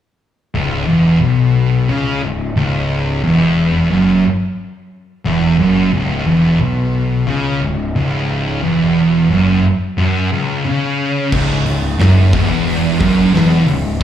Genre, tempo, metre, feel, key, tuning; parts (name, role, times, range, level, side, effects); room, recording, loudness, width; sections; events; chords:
stoner and doom metal; 89 BPM; 4/4; straight; C# minor; A4 = 442 Hz
thick fuzz guitar; riff; 0.5-14.0 s; C#2 to C#3; -15 LUFS; left 3 dB; distortion, slapback echo
thick fuzz guitar; riff; 0.5-13.9 s; C#2 to C#3; -18 LUFS; right 7 dB; distortion, slapback echo
fuzz picked electric bass; bass; 0.5-14.0 s; C#1 to C#2; -21 LUFS; equal; overdrive
high-gain distorted guitar; riff; 11.3-13.9 s; C#2 to F#2; -22 LUFS; right 3 dB; distortion, slapback echo
big rock drum kit; drums; 11.3-14.0 s; crash cymbal, hi-hat, kick drum, snare drum; -21 LUFS; equal
light reverb; live gig heard through the venue's PA, club reverb; -12 LUFS; side -10 dB against mid
0.5-11.3 A section; 11.3-14.0 B section
break 10.0-11.3
0.5 C#m